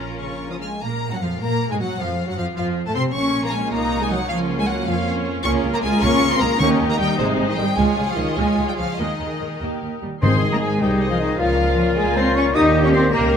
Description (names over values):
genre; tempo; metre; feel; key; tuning
quick classical-period movement for symphony orchestra; 103 BPM (dotted quarters); 6/8; rubato; Bb minor, Ab major from 5.4 s; A4 = 440 Hz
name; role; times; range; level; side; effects
rich chamber violin section; melody; 0.0-13.4 s; G4 to F6; -26 LUFS; left 2 dB; none
clear studio violin section; second line; 0.0-13.4 s; F4 to Eb6; -29 LUFS; left 3 dB; none
rich chamber viola section; accompaniment; 0.0-13.4 s; Eb3 to Bb4; -25 LUFS; right 1 dB; none
rich chamber double bass section; bass; 0.0-13.4 s; Ab1 to C3; -26 LUFS; right 3 dB; none
warm chamber cello section; bass; 0.0-13.4 s; C3 to Eb4; -23 LUFS; right 1 dB; none
warm French horn section; sustained chords; 0.2-13.4 s; C3 to C5; -27 LUFS; left 4 dB; none
timpani; percussion; 6.6-7.1, 10.2-10.8 s; Ab2 to Eb3; -23 LUFS; left 1 dB; none
clear oboe; second line; 10.2-13.4 s; F4 to Ab4; -28 LUFS; equal; none
dark clarinet; second line; 10.2-13.3 s; Eb4 to Eb5; -26 LUFS; left 3 dB; none
mellow hollow silver concert flute; second line; 10.2-13.2 s; Eb5 to Eb6; -27 LUFS; left 2 dB; none
mellow bassoon; accompaniment; 10.2-13.4 s; Bb2 to Eb3; -28 LUFS; equal; none
room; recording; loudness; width
moderate scoring stage reverb, RT60 1.6 s; none; -18 LUFS; side -7 dB against mid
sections
0.8-10.2 A section; 10.2-13.4 B section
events
none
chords
0.0 Bbm; 0.8 Bb5; 2.0 F; 3.1 Bbm; 4.3 Bbm/Db; 5.4 Bbm7/Db; 6.6 Eb7; 7.2 Ab; 7.8 Db; 9.0 Ebsus4; 9.6 Eb; 10.2 Ab; 10.8 Ab/C; 11.4 Bbm/Db; 12.6 Eb